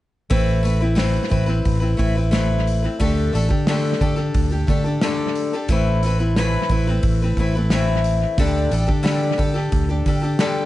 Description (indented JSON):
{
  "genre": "folk rock and heartland rock",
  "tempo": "89 BPM",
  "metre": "4/4",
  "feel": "straight",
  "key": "A minor",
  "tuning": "A4 = 441 Hz",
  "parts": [
    { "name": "picked acoustic archtop guitar", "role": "accompaniment", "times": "0.3-10.7 s", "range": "A2 to B4", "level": "-22 LUFS", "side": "left 2 dB", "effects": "none" },
    { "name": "fingered electric bass", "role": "bass", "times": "0.3-10.3 s", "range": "A1 to D3", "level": "-20 LUFS", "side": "right 1 dB", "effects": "none" },
    { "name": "loose indie drum kit", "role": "drums", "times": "0.3-10.5 s", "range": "hi-hat, kick drum, snare drum", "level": "-23 LUFS", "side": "equal", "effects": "tape echo" }
  ],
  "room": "little or no reverb",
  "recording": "echo-heavy mix, nothing above 10.6 kHz",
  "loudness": "-17 LUFS",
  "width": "side -15 dB against mid",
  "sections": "0.3-10.7 A section",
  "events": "none",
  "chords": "0.3 Amadd9; 3.0 Dsus4; 5.7 Amadd9; 8.4 Dsus4"
}